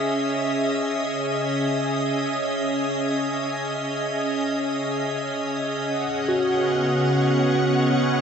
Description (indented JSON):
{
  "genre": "ambient",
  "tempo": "free time",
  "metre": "none",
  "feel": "none",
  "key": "C# minor",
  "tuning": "A4 = 440 Hz",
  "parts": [
    { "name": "soft additive organ-like pad", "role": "sustained chords", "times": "0.0-8.2 s", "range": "C#3 to E5", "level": "-23 LUFS", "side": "equal", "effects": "ensemble chorus, built-in reverb" },
    { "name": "organ-like drone", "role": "drone", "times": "0.0-8.2 s", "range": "C#3 to C#4", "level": "-28 LUFS", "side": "equal", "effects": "ensemble chorus, built-in reverb" },
    { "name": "dark symphonic violin section", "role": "texture", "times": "5.9-8.2 s", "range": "F#5", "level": "-30 LUFS", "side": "equal", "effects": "none" },
    { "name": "mellow tine electric piano", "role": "arpeggios", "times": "6.3-8.2 s", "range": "F#4", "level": "-24 LUFS", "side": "right 1 dB", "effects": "slow stereo tremolo, tape echo" }
  ],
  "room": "wet lush hall reverb, RT60 2.8 s",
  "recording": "cassette tape",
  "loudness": "-21 LUFS",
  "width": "side -7 dB against mid",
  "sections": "0.0-8.2 A section",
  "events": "none",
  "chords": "0.0 C#m; 5.9 B/C#",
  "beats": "free time"
}